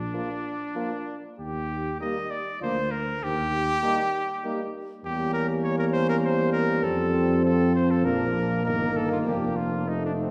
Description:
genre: classical, brass quintet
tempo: 99 BPM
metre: 3/4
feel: rubato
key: Bb major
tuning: A4 = 440 Hz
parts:
  - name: clear cornet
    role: melody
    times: 0.0-10.3 s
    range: C4 to Eb5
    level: -31 LUFS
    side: equal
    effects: none
  - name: mellow tuba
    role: bass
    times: 0.0-10.3 s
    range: F1 to F2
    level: -30 LUFS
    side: equal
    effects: none
  - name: mellow flugelhorn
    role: second line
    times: 0.1-10.3 s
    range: C4 to F4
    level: -36 LUFS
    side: equal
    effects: none
  - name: clear French horn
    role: accompaniment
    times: 0.1-10.3 s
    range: A3 to C4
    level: -34 LUFS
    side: equal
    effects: none
  - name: clear euphonium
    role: accompaniment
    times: 0.1-10.3 s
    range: Eb3 to G3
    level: -34 LUFS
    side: equal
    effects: none
room: wet recital hall reverb, RT60 1.7 s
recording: heard from further back in the room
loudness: -26 LUFS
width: mono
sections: 0.0-10.3 A section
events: none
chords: 0.0 Bb; 1.4 Eb; 2.6 Bb/D; 3.2 Eb; 5.0 Edim7; 6.8 F; 8.1 Bb; 8.7 Eb/G; 9.3 Bb/F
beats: 0.13 0.75 | 1.39 2.00 2.61 | 3.22 3.82 4.43 | 5.03 5.63 6.23 | 6.83 7.44 8.05 | 8.65 9.25 9.88

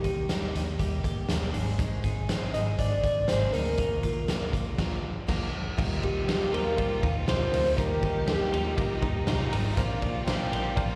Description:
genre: jangly indie pop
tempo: 120 BPM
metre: 4/4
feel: straight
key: unclear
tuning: A4 = 440 Hz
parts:
  - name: soft octave-layered synth lead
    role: melody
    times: 0.0-9.5 s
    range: G4 to Eb5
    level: -32 LUFS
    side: equal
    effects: chorus, slapback echo, digital delay
  - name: fingerpicked steel-string acoustic guitar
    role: accompaniment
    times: 0.0-11.0 s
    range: Ab2 to Bb4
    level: -40 LUFS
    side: equal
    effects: slapback echo
  - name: twelve-string electric guitar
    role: arpeggios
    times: 0.0-11.0 s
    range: Ab2 to Ab4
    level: -41 LUFS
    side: equal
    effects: slapback echo, digital delay
  - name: vintage muted fingered electric bass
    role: bass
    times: 0.0-11.0 s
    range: Ab1 to Eb2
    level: -34 LUFS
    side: equal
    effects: none
  - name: raw garage drum kit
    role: drums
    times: 0.0-10.9 s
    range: crash cymbal, hi-hat, kick drum, ride cymbal, snare drum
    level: -33 LUFS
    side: equal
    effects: none
  - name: warm studio violin section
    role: second line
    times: 5.8-11.0 s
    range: Eb4 to G4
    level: -41 LUFS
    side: equal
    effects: slapback echo
  - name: reed electric piano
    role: accompaniment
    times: 5.8-11.0 s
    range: D4 to D5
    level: -40 LUFS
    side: equal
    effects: none
room: studio ambience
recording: live gig heard through the venue's PA, recital hall reverb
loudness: -28 LUFS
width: mono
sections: 0.0-5.8 A section; 5.8-11.0 B section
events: band accent 4.8-5.8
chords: 0.0 Eb; 1.5 Ab; 3.8 Ebsus2; 5.8 Ebadd9; 9.8 Bbadd9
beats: 0.30 0.80 1.30 | 1.79 2.29 2.79 3.29 | 3.79 4.29 4.79 5.29 | 5.79 6.29 6.79 7.29 | 7.78 8.28 8.78 9.28 | 9.78 10.28 10.77

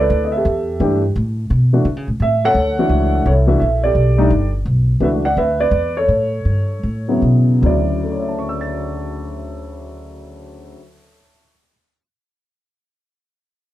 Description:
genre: jazz piano trio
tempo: 146-172 BPM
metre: 4/4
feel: swing 65% on 8ths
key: D major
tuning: A4 = 442 Hz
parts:
  - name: warm upright piano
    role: melody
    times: 0.0-11.7 s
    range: D2 to A6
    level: -18 LUFS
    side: equal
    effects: none
  - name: upright bass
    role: bass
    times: 0.0-10.7 s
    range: G1 to D3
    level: -18 LUFS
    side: equal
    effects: none
room: moderate club reverb, RT60 0.7 s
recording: dark, warm production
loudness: -14 LUFS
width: side -14 dB against mid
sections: 0.0-4.7 A section; 4.7-7.6 B section; 7.6-10.9 C section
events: slowing down 4.7-7.6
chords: 0.5 Em7; 1.2 Asus2; 1.9 Dmaj9; 3.3 F#m7b5 (rootless); 4.0 Bm7b13; 4.7 E5; 6.1 A9; 7.6 Dmaj9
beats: 0.10 | 0.45 0.80 1.15 1.50 | 1.85 2.20 2.55 2.90 | 3.25 3.60 3.95 4.30 | 4.65 5.00 5.36 5.71 | 6.08 6.45 6.83 7.22 | 7.63 8.04 8.45 8.86 | 9.27 9.68 10.09 10.51

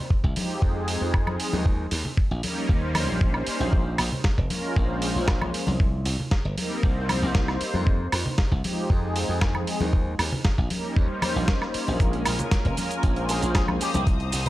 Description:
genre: nu-disco, nu disco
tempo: 116 BPM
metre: 4/4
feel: straight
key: Bb dorian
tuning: A4 = 440 Hz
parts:
  - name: electronic kick drum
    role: drums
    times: 0.1-14.2 s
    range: none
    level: -22 LUFS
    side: equal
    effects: none
  - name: glassy slap bass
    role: bass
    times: 0.2-14.4 s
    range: F1 to F2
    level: -28 LUFS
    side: equal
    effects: none
  - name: warm analog pad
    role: accompaniment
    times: 0.4-13.8 s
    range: F3 to C5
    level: -30 LUFS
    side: equal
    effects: chorus, sidechain pumping, analog delay
  - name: dusty soul sampler-style drum kit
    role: drums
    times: 0.4-14.5 s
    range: hi-hat, shaker, snare drum, woodblock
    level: -29 LUFS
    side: right 1 dB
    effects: none
  - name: congas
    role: percussion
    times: 0.4-14.5 s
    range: none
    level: -32 LUFS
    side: left 1 dB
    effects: none
  - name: clear symphonic string section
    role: sustained chords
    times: 12.0-14.5 s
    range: Bb4 to Eb6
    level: -35 LUFS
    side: left 4 dB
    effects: sidechain pumping
  - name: electric guitar with an envelope filter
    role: melody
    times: 13.3-14.5 s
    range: G4 to Bb4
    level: -31 LUFS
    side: left 1 dB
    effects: wide subtle chorus, tape echo
room: little or no reverb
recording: none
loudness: -22 LUFS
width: side -16 dB against mid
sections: 0.0-14.5 A section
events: none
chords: 0.0 Fm9; 1.7 Eb7; 3.7 Bbm7; 5.5 Cm7; 7.9 Fm9; 9.9 Eb7; 12.0 Bbm7; 13.8 Cm7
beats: 0.11 0.62 1.14 | 1.66 2.18 2.69 3.21 | 3.73 4.25 4.76 5.28 | 5.80 6.31 6.83 7.35 | 7.87 8.38 8.90 9.42 | 9.93 10.45 10.97 11.49 | 12.00 12.52 13.04 13.55 | 14.07

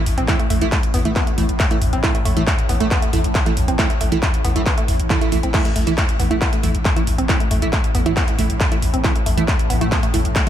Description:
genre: driving peak-time techno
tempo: 137 BPM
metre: 4/4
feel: straight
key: unclear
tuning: A4 = 439 Hz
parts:
  - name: woody wave-folded pluck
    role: riff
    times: 0.0-10.5 s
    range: A3 to C4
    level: -26 LUFS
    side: equal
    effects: chorus, tube saturation, sidechain pumping, ping-pong delay
  - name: swarming drone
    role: drone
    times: 0.0-10.5 s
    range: A2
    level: -28 LUFS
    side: equal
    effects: built-in reverb, sidechain pumping
  - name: growling 808-style bass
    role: bass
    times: 0.1-10.4 s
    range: A1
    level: -22 LUFS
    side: left 1 dB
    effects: overdrive, sidechain pumping, low-pass filter
  - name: techno drum kit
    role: drums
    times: 0.1-10.5 s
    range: crash cymbal, handclaps, hi-hat, toms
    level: -23 LUFS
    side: equal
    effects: overdrive
  - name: wavetable chord stab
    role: stabs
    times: 0.3-10.5 s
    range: E3 to E4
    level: -24 LUFS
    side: right 3 dB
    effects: sidechain pumping, diffuse ambient delay
  - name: electronic kick drum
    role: drums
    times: 0.3-10.4 s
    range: none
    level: -20 LUFS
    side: left 1 dB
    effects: distortion, overdrive
room: light reverb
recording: none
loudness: -16 LUFS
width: side -10 dB against mid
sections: 0.0-10.5 A section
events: none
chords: 0.0 A5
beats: | 0.28 0.72 1.16 1.60 | 2.04 2.47 2.91 3.35 | 3.79 4.23 4.66 5.10 | 5.54 5.98 6.42 6.85 | 7.29 7.73 8.17 8.61 | 9.04 9.48 9.92 10.36

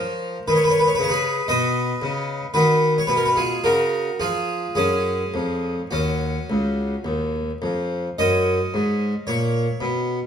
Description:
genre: classical, baroque-style suite movement for harpsichord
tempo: 51-58 BPM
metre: 3/4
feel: rubato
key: F# major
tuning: A4 = 440 Hz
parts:
  - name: harpsichord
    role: solo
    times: 0.0-10.3 s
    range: C#2 to D#5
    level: -19 LUFS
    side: equal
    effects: none
room: wet stone room reverb, RT60 1.1 s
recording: heard from further back in the room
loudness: -19 LUFS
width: side -8 dB against mid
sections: 0.0-8.2 A section; 8.2-10.3 B section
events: none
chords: 0.5 G#madd11; 1.5 B; 3.6 C#; 4.8 F#5; 8.2 F#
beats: 0.46 | 1.49 2.55 3.64 | 4.76 5.90 7.03 | 8.17 9.27

